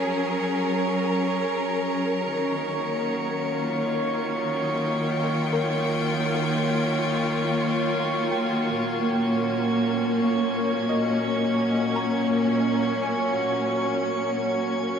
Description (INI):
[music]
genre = ambient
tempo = 56 BPM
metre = 3/4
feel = straight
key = unclear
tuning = A4 = 440 Hz
[part]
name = clear symphonic string section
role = sustained chords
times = 0.0-15.0 s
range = A#2 to G5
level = -24 LUFS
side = equal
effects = shimmer reverb
[part]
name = pedal harmonium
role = drone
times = 0.0-15.0 s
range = F#3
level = -36 LUFS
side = equal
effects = none
[part]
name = drifting glass-harmonics texture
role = texture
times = 0.0-15.0 s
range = C#5 to C#6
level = -29 LUFS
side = right 1 dB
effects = chorus, built-in reverb, shimmer reverb
[part]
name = soft round pluck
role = arpeggios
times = 5.5-14.7 s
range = A#4 to A#5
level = -35 LUFS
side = left 2 dB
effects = lush chorus, diffuse ambient delay, shimmer reverb
[sound]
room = wet huge ambient reverb, RT60 8.4 s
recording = in a vast, echoing space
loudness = -22 LUFS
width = side -7 dB against mid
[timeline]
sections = 0.0-15.0 A section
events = fade-in on harmonium 0.0-15.0; fade-out on synth pluck 0.0-15.0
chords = 0.0 F#add9; 2.3 D#add9; 8.7 A#m7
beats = 0.17 1.24 | 2.31 3.39 4.46 | 5.53 6.60 7.67 | 8.74 9.81 10.89 | 11.96 13.03 14.10